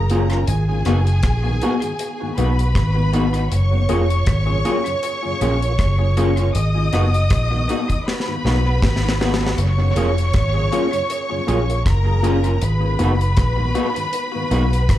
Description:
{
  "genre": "lovers rock reggae",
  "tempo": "79 BPM",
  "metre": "4/4",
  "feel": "swing 55% on 16ths",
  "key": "G# dorian",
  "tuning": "A4 = 439 Hz",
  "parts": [
    { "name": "dark studio string section", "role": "second line", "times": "0.0-15.0 s", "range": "G#4 to D#6", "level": "-24 LUFS", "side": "equal", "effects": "plate reverb" },
    { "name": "mellow tonewheel organ", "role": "accompaniment", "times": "0.0-14.8 s", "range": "F#2 to F#4", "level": "-30 LUFS", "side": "right 2 dB", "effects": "chorus vibrato, slow rotary speaker, tape echo, plate reverb, slapback echo" },
    { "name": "vintage muted fingered electric bass", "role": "bass", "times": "0.0-15.0 s", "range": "E#1 to B1", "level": "-18 LUFS", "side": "equal", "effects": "none" },
    { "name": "tine electric piano", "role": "accompaniment", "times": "0.1-14.7 s", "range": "A#3 to G#4", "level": "-25 LUFS", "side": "left 3 dB", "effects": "medium stereo tremolo, tape echo, plate reverb, slapback echo" },
    { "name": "electric guitar through a small old amp", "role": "stabs", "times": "0.1-14.6 s", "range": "A#3 to F#4", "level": "-27 LUFS", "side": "right 2 dB", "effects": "plate reverb, slapback echo" },
    { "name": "deep reggae drum kit", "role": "drums", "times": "0.1-15.0 s", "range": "hi-hat, kick drum, rim click, snare drum", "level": "-22 LUFS", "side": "equal", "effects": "tape echo" }
  ],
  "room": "light reverb",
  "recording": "live gig heard through the venue's PA, club ambience",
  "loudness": "-16 LUFS",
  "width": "side -13 dB against mid",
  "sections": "0.0-15.0 A section",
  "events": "drum fill 8.1-9.6",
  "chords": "0.5 G#m7; 3.5 F#maj7; 6.6 G#m7; 9.6 F#maj7; 12.6 G#m7"
}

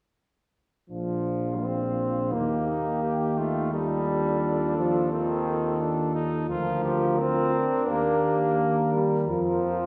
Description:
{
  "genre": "classical, brass quintet",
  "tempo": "86 BPM",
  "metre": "4/4",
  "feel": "straight",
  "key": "Bb major",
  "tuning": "A4 = 439 Hz",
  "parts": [
    { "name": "mellow flugelhorn", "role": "second line", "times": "0.9-9.9 s", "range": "F4 to Bb4", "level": "-35 LUFS", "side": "equal", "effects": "none" },
    { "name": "clear trombone", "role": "accompaniment", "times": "0.9-9.9 s", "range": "Eb3 to C4", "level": "-29 LUFS", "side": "equal", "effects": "none" },
    { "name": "mellow French horn", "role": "accompaniment", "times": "0.9-9.9 s", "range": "D4 to G4", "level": "-34 LUFS", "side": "equal", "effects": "none" },
    { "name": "mellow tuba", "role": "bass", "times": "0.9-9.9 s", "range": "Bb1 to F2", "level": "-32 LUFS", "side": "equal", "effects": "none" },
    { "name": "mellow trumpet", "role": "melody", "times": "2.3-9.9 s", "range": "C4 to G4", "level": "-36 LUFS", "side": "equal", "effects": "none" }
  ],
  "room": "wet recital hall reverb, RT60 1.6 s",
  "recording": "recorded in a church or concert hall",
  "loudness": "-26 LUFS",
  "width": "mono",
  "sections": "0.9-9.9 A section",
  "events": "none",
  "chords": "0.9 Bb; 2.3 Eb; 3.7 F7/Eb; 6.5 Bb/D; 7.9 Eb; 9.3 Fsus4"
}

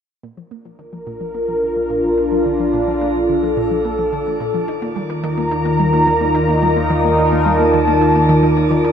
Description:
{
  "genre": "ambient, sequencer-driven space music",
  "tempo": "108 BPM",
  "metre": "4/4",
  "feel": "straight",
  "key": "Bb major",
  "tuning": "A4 = 437 Hz",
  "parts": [
    { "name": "sweeping resonant pad", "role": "sustained chords", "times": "0.2-8.9 s", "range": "Eb3 to Bb5", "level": "-15 LUFS", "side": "equal", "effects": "chorus, shimmer reverb" },
    { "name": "analog pluck", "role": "riff", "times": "0.2-8.9 s", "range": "Bb2 to Eb4", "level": "-25 LUFS", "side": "equal", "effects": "chorus, ping-pong delay, shimmer reverb" },
    { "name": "analog drone", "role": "bass", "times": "1.4-8.9 s", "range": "Bb1 to Eb2", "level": "-26 LUFS", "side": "equal", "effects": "chorus" },
    { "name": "wind-like tuned noise texture", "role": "texture", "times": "1.6-8.9 s", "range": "D5", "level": "-31 LUFS", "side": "equal", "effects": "built-in reverb, shimmer reverb" }
  ],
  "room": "wet spring reverb, RT60 2.5 s",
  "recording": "echo-heavy mix, nothing above 10.4 kHz",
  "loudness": "-14 LUFS",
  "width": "side -8 dB against mid",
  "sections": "0.2-8.9 A section",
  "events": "fade-in on synth arpeggio sound 0.2-8.9; fade-in on synth drone 0.2-8.9; fade-in on synth texture 0.2-8.9; filter sweep on analog synth pad 0.2-8.9",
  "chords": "0.2 Bb; 4.7 Ebsus2"
}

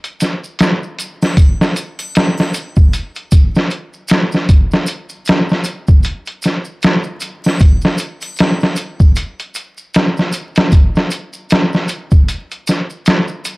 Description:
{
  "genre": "trip hop",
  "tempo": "77 BPM",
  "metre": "4/4",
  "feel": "swing 58% on 16ths",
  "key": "none",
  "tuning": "none",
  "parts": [
    { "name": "trip hop sampler-style drum kit", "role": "drums", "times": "0.0-13.6 s", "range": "hi-hat, kick drum, snare drum", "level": "-11 LUFS", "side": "equal", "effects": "vintage 12-bit sampler grit" },
    { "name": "maracas and triangle", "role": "percussion", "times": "0.0-13.6 s", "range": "none", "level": "-30 LUFS", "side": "right 1 dB", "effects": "none" }
  ],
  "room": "little or no reverb",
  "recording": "dry, gritty hardware recording, transformer saturation, vinyl crackle",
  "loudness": "-12 LUFS",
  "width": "side -25 dB against mid",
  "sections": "0.0-13.6 A section",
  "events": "none",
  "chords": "none"
}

